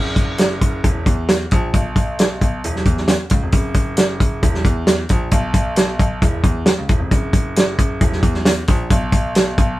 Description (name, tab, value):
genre	uptempo 1960s-style soul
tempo	134 BPM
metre	4/4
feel	straight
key	F# mixolydian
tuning	A4 = 439 Hz
part	clear grand piano	bass	0.0-9.8 s	E1 to E2	-22 LUFS	equal	none
part	warm soul drum kit	drums	0.2-9.7 s	hi-hat, kick drum, snare drum	-15 LUFS	equal	none
room	light reverb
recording	band playing live in one room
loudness	-15 LUFS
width	side -16 dB against mid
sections	0.0-9.8 A section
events	none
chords	none